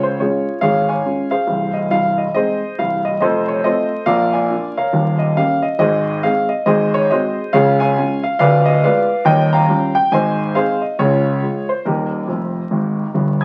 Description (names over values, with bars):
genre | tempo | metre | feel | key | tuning
jazz, stride piano | 139 BPM | 4/4 | swing 62% on 8ths | Ab major | A4 = 438 Hz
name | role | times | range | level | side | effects
warm baby grand piano | solo | 0.0-13.4 s | C1 to Ab6 | -17 LUFS | equal | none
room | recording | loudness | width
wet studio reverb, RT60 0.6 s | very old 78 rpm record, vinyl crackle | -17 LUFS | mono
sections
0.0-13.4 A section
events
grand piano fill 12.3-13.4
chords
0.0 Db; 1.5 Ab/C; 3.2 F7; 4.1 Bb7; 4.9 Eb7; 5.8 Ab; 6.7 Ab7; 7.5 Db; 8.4 Ddim7; 9.3 Eb9; 10.1 Ab; 11.0 Db; 11.8 Eb